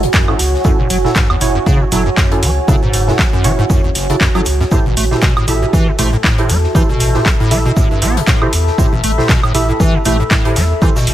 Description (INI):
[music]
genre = acid house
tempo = 118 BPM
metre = 4/4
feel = swing 56% on 16ths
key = unclear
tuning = A4 = 438 Hz
[part]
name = acid bass, square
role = riff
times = 0.0-11.1 s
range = F#1 to C4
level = -18 LUFS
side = equal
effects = ensemble chorus, tape echo
[part]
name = warm sub bass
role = bass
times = 0.0-11.1 s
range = F#1 to E2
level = -17 LUFS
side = equal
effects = tube saturation, sidechain pumping
[part]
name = big rock drum kit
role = drums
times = 0.0-11.1 s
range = hi-hat, shaker, snare drum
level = -28 LUFS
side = left 1 dB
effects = sidechain pumping on hats, high-pass filter on hats, studio reverb, high-pass filter on snare, sidechain pumping on perc, high-pass filter on perc, high-pass filter on room
[part]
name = deep dark ambient pad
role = texture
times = 0.0-11.1 s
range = F#4 to B5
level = -21 LUFS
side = right 1 dB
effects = chorus, built-in reverb, sidechain pumping
[part]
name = booming analog drum machine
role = drums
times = 0.1-11.1 s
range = handclaps, hi-hat, toms, woodblock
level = -18 LUFS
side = equal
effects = studio reverb
[part]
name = electronic kick drum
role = drums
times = 0.1-10.9 s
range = none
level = -15 LUFS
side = equal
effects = studio reverb
[part]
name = percussive organ stab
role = stabs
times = 0.3-11.0 s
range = C#4 to E5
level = -20 LUFS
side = right 3 dB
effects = ensemble chorus, tape echo
[sound]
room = light reverb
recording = none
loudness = -11 LUFS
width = side -13 dB against mid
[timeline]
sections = 0.0-11.1 A section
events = none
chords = 0.0 F#m7; 4.7 Am7